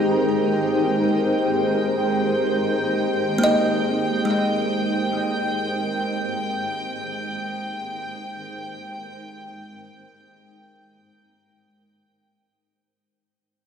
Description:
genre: ambient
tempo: free time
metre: none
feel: none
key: Ab major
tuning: A4 = 440 Hz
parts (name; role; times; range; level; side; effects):
- granular cloud pad; sustained chords; 0.0-12.9 s; Ab3 to G5; -24 LUFS; equal; built-in reverb, shimmer reverb
- kalimba; arpeggios; 0.0-6.8 s; Ab3 to G5; -26 LUFS; right 1 dB; tape echo, shimmer reverb
- analog drone; drone; 0.0-13.0 s; Ab3 to G4; -27 LUFS; equal; chorus
- dark studio violin section; texture; 0.0-12.9 s; G5; -29 LUFS; equal; shimmer reverb
room: wet scoring stage reverb, RT60 2.2 s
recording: none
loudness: -20 LUFS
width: side -7 dB against mid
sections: 0.0-12.9 A section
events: fade-out 3.6-12.9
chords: 0.0 Abmaj7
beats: free time

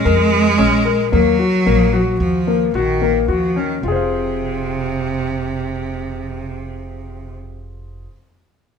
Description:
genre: contemporary instrumental, chamber music in an uneven meter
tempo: 110 BPM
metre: 5/4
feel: straight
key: F phrygian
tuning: A4 = 440 Hz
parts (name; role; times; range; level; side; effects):
- clear cello; second line; 0.0-7.4 s; C3 to Ab3; -19 LUFS; right 2 dB; none
- upright bass; bass; 0.0-8.1 s; F1 to F2; -23 LUFS; right 1 dB; none
- warm grand piano; arpeggios; 0.1-8.1 s; Bb3 to F5; -19 LUFS; left 7 dB; none
room: wet studio reverb, RT60 0.9 s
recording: heard from further back in the room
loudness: -15 LUFS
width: side -6 dB against mid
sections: 0.0-3.8 A section; 3.8-6.6 B section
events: slowing down 0.0-3.8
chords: 0.0 Bbm; 1.1 Ebm; 3.8 Fm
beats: 0.06 0.59 | 1.12 1.66 2.20 2.74 3.29 | 3.84 4.39 4.94 5.50 6.05

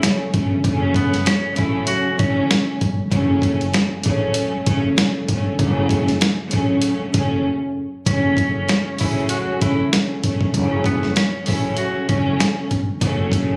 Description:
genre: hip hop, boom-bap hip-hop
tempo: 97 BPM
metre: 4/4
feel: swing 56% on 16ths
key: F# minor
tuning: A4 = 441 Hz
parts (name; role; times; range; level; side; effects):
- warm studio string section; accompaniment; 0.0-13.6 s; C#3 to C#4; -24 LUFS; equal; cassette tape, high-pass filter, low-pass filter
- dusty soul sampler-style drum kit; drums; 0.0-13.5 s; hi-hat, kick drum, snare drum; -22 LUFS; equal; none
- upright bass; bass; 0.3-13.6 s; F#1 to A1; -25 LUFS; equal; none
- breathy tenor saxophone; melody; 0.8-2.5, 8.1-12.4 s; B3 to F#4; -28 LUFS; equal; high-pass filter, low-pass filter, digital delay
room: small room ambience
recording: recorded on a phone in the room, club reverb, compression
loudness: -19 LUFS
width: mono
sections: 0.0-8.1 A section; 8.1-13.6 B section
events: break 7.4-8.1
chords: 0.0 F#m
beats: 0.02 | 0.64 1.26 1.88 2.50 | 3.12 3.73 4.35 4.97 | 5.59 6.21 6.83 7.45 | 8.06 8.68 9.30 9.92 | 10.54 11.16 11.78 12.39 | 13.01

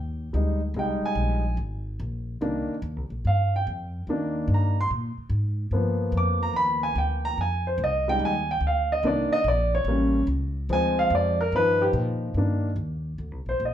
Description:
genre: jazz, big band swing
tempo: 145 BPM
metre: 4/4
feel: swing 67% on 8ths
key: C minor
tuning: A4 = 439 Hz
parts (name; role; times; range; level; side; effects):
- upright bass; bass; 0.0-13.7 s; Ab1 to Bb2; -27 LUFS; equal; none
- warm baby grand piano; accompaniment; 0.3-13.7 s; Eb3 to D6; -24 LUFS; equal; none
room: wet large studio reverb, RT60 0.8 s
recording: band playing live in one room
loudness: -23 LUFS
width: side -10 dB against mid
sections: 0.0-12.4 A section; 12.4-13.7 A section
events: grand piano solo 0.0-12.4, 12.4-13.7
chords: 0.0 Cm9; 5.7 G7#9; 7.4 Fm9; 9.0 Cm9; 9.9 A7b9; 10.7 Dm7b5; 11.5 G7alt; 12.4 Cm9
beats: 0.35 | 0.77 1.18 1.59 2.01 | 2.42 2.83 3.25 3.66 | 4.08 4.49 4.90 5.32 | 5.73 6.14 6.56 6.97 | 7.39 7.80 8.21 8.63 | 9.04 9.46 9.87 10.29 | 10.70 11.12 11.53 11.95 | 12.36 12.78 13.20 13.61

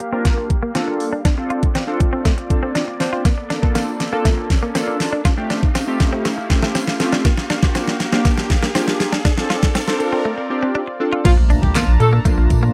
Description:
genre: dance-pop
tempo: 120 BPM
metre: 4/4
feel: straight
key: Bb major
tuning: A4 = 442 Hz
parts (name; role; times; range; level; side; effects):
- warm analog pad; sustained chords; 0.0-12.7 s; A3 to Bb5; -30 LUFS; equal; chorus, tremolo, sidechain pumping, low-pass filter
- direct-recorded clean electric guitar; riff; 0.0-12.7 s; A3 to F4; -26 LUFS; equal; subtle chorus, low-pass filter
- pop drum kit; drums; 0.0-12.6 s; crash cymbal, handclaps, hi-hat, kick drum, snare drum; -20 LUFS; equal; overdrive
- riser and impact; sound effects; 0.0-12.7 s; none; -33 LUFS; equal; none
- chorused polysynth; accompaniment; 0.1-12.7 s; F3 to C5; -25 LUFS; equal; sidechain pumping, low-pass filter
- tambourine; percussion; 3.3-12.6 s; none; -43 LUFS; equal; none
- warm horn section; melody; 11.3-12.1 s; F3 to A4; -22 LUFS; equal; sidechain pumping, slapback echo
- saturated sub bass; bass; 11.3-12.7 s; Bb1 to Bb2; -16 LUFS; equal; sidechain pumping
room: little or no reverb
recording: dry, close 1970s-style studio recording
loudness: -18 LUFS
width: mono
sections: 0.0-11.3 A section; 11.3-12.7 B section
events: build-up 0.0-11.3; drum fill 0.0-10.3; filter sweep 0.0-11.3; break 10.3-11.3; drop 11.3-12.7; impact 11.3-12.7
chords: 0.0 Gm7; 1.3 Dm7; 3.3 Bbmaj7; 5.3 Fadd9; 7.3 Gm7; 9.3 Dm7; 11.3 Bbmaj7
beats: 0.25 0.75 | 1.25 1.75 2.25 2.75 | 3.25 3.75 4.25 4.75 | 5.25 5.75 6.25 6.75 | 7.25 7.75 8.25 8.75 | 9.25 9.75 10.25 10.75 | 11.25 11.75 12.25

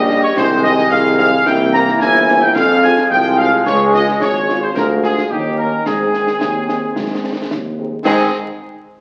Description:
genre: military-style march for wind band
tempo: 109 BPM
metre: 2/4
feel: straight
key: Ab major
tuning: A4 = 440 Hz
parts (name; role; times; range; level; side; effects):
- warm trumpet section; melody; 0.0-8.3 s; G4 to Bb5; -21 LUFS; equal; none
- clear euphonium; second line; 0.0-7.8 s; C4 to Ab4; -25 LUFS; equal; none
- mellow hollow wooden piccolo; second line; 0.0-8.4 s; G5 to Bb6; -23 LUFS; equal; none
- warm woodwind section; second line; 0.0-8.3 s; C4 to Bb5; -24 LUFS; equal; none
- clear trombone section; sustained chords; 0.0-8.3 s; Db3 to Db4; -24 LUFS; equal; none
- warm tuba; bass; 0.0-8.3 s; G1 to Ab2; -21 LUFS; equal; none
- dark French horn section; accompaniment; 0.1-8.3 s; G3 to G4; -27 LUFS; equal; none
- concert snare drum, concert bass drum and clash cymbals; drums; 0.1-8.4 s; none; -28 LUFS; equal; none
room: wet large studio reverb, RT60 1.2 s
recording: very old 78 rpm record, vinyl crackle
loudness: -15 LUFS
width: mono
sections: 0.0-8.1 A section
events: none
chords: 0.4 Ab/C; 1.5 C7; 2.6 Fm; 3.7 Db; 4.8 Bb7/D; 5.3 Eb7; 5.9 Ab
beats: | 0.37 0.92 | 1.47 2.02 | 2.56 3.11 | 3.66 4.21 | 4.76 5.31 | 5.86 6.41 | 6.96 7.51 | 8.06

